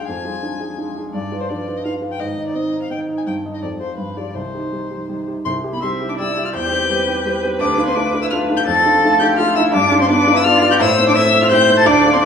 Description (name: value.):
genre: quick classical-period movement for piano quartet.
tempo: 168 BPM.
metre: 3/4.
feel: straight.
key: C minor, C major from 5.5 s.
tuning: A4 = 440 Hz.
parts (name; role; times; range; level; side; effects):
muted violin; melody; 0.0-12.3 s; B4 to A6; -19 LUFS; left 6 dB; none.
muted cello; second line; 0.0-12.2 s; C3 to A4; -21 LUFS; right 5 dB; none.
warm grand piano; accompaniment; 0.0-12.3 s; C2 to Eb5; -19 LUFS; left 1 dB; none.
muted viola; accompaniment; 5.8-12.3 s; G4 to E5; -21 LUFS; right 1 dB; none.
room: wet recital hall reverb, RT60 1.6 s.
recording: small room ambience.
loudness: -14 LUFS.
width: side -7 dB against mid.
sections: 0.0-5.5 A section; 5.5-12.3 A section.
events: none.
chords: 0.1 Ddim/F; 1.1 G7; 2.2 Ab; 3.3 Eb/G; 3.6 Fm; 4.0 G7; 4.4 Cm; 5.5 C; 6.5 C/E; 7.6 Dm; 8.7 Dm/F; 9.7 G7; 10.8 Am.